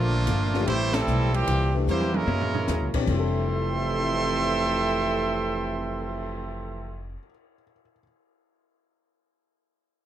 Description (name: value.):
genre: jazz, big band swing.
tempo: 150 BPM.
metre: 4/4.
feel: swing 66% on 8ths.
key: F major.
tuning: A4 = 445 Hz.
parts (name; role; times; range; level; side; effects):
bright trumpet section; melody; 0.0-7.1 s; G3 to C6; -27 LUFS; right 2 dB; slapback echo.
warm trombone section; second line; 0.0-7.0 s; F2 to C4; -30 LUFS; right 4 dB; none.
hollow-body jazz guitar; accompaniment; 0.0-7.3 s; A2 to Ab4; -36 LUFS; left 9 dB; none.
upright bass; bass; 0.0-7.1 s; F1 to Gb2; -28 LUFS; equal; none.
open jazz drum kit; drums; 0.3-6.2 s; crash cymbal, cymbal swell, hi-hat, kick drum, ride cymbal, snare drum, toms; -34 LUFS; equal; none.
clear upright piano; accompaniment; 0.5-8.0 s; F2 to C7; -32 LUFS; left 9 dB; none.
room: little or no reverb.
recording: dry, close 1970s-style studio recording.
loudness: -23 LUFS.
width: side -11 dB against mid.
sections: 0.0-3.1 A section; 3.1-6.3 B section.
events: band accent 0.9; drum fill 1.9-2.7.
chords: 0.0 Bbmaj7; 0.7 Am7; 1.5 C7; 2.3 Gb9; 3.1 Fmaj9.